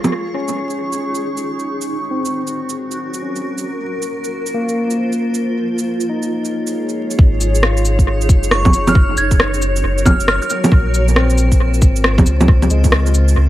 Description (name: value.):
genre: future garage.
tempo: 136 BPM.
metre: 4/4.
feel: swing 64% on 16ths.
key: unclear.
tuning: A4 = 440 Hz.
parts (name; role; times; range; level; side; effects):
barky tine electric piano; accompaniment; 0.0-13.5 s; Ab3 to F4; -22 LUFS; left 1 dB; sidechain pumping, analog delay.
granular cloud pad; sustained chords; 0.0-13.5 s; Eb4 to Db6; -23 LUFS; equal; built-in reverb, sidechain pumping.
electronic bongos, shaker, cabasa and rim click; drums; 0.0-13.3 s; none; -18 LUFS; right 1 dB; analog delay.
warm sub bass; bass; 7.2-13.5 s; Gb1 to Db2; -15 LUFS; equal; tube saturation, sidechain pumping.
electronic kick drum; drums; 7.2-12.9 s; none; -11 LUFS; equal; none.
glassy synth bell; melody; 8.5-10.5 s; Db6 to Ab6; -20 LUFS; right 1 dB; chorus, vintage 12-bit sampler grit, analog delay.
room: moderate spring reverb, RT60 1.2 s, digital ambience.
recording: echo-heavy mix, vinyl crackle.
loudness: -14 LUFS.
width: side -14 dB against mid.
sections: 0.1-7.2 A section; 7.2-13.5 B section.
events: none.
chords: 0.1 Absus4; 1.9 Gb; 3.7 Bbsus2; 5.4 Db; 7.2 Absus4; 9.0 Gb; 10.7 Bbsus2.